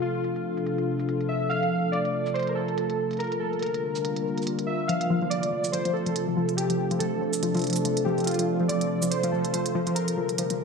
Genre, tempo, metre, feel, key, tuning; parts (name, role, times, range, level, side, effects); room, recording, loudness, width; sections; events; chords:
IDM; 142 BPM; 4/4; swing 56% on 16ths; F major; A4 = 439 Hz
warbly lo-fi synth keys; melody; 0.0-10.6 s; F4 to F5; -28 LUFS; equal; chorus, ping-pong delay
warbly tape-like pad; sustained chords; 0.0-10.6 s; C3 to Bb4; -28 LUFS; equal; chorus, built-in reverb
electronic hi-hat and cabasa; drums; 0.0-10.6 s; -34 LUFS; right 5 dB; low-pass filter on hats, studio reverb, low-pass filter on snare, low-pass filter on perc
warbly dusty pluck; arpeggios; 4.9-10.6 s; F3; -29 LUFS; left 2 dB; chorus, diffuse ambient delay
wet lush hall reverb, RT60 1.6 s; dreamy mix soaked in reverb; -24 LUFS; side -5 dB against mid
0.0-10.6 A section
filter sweep on ambient pad 0.0-10.6
0.0 Dm7; 1.5 F; 3.2 Gm7; 4.9 F; 6.6 Dm7; 8.3 F; 10.0 Gm7